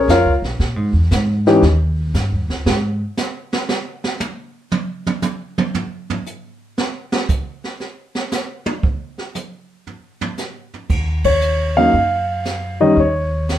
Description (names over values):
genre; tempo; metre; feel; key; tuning
jazz piano trio; 116 BPM; 4/4; swing 68% on 8ths; unclear; A4 = 440 Hz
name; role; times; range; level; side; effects
warm grand piano; melody; 0.0-1.6, 11.3-13.6 s; Db3 to E#5; -14 LUFS; left 1 dB; none
upright bass; bass; 0.0-3.0, 10.9-13.6 s; A#1 to A#2; -18 LUFS; equal; none
jazz brush drum kit; drums; 0.1-13.6 s; brushed snare drum, crash cymbal, hi-hat, kick drum, ride cymbal, snare drum, toms; -21 LUFS; right 3 dB; none
room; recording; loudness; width
wet studio reverb, RT60 0.6 s; heard from further back in the room; -16 LUFS; side -11 dB against mid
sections
0.0-10.9 A section; 10.9-13.6 B section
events
grand piano solo 0.0-10.9; drum solo 2.7-10.9; band accent 11.2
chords
0.0 C#6; 0.6 A#7(b5, no3); 1.6 D#7; 2.7 N.C.; 10.9 Ebm7; 13.0 Eb7(no3)